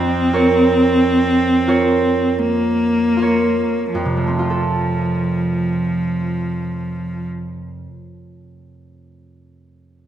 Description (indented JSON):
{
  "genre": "classical, romantic duo for cello and harp",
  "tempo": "36-48 BPM",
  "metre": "3/4",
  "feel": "rubato",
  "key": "F major",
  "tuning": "A4 = 440 Hz",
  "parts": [
    { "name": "rich cello", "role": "melody", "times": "0.0-7.3 s", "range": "F3 to C4", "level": "-18 LUFS", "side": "equal", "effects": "none" },
    { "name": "concert harp", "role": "accompaniment", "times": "0.0-8.0 s", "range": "F2 to Db5", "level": "-20 LUFS", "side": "right 3 dB", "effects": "none" }
  ],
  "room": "moderate scoring stage reverb, RT60 1.7 s",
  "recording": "none",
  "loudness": "-15 LUFS",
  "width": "side -10 dB against mid",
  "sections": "0.0-3.9 A section; 3.9-8.1 B section",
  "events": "slowing down 0.0-3.9",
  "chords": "0.0 Bbm/F; 3.9 F"
}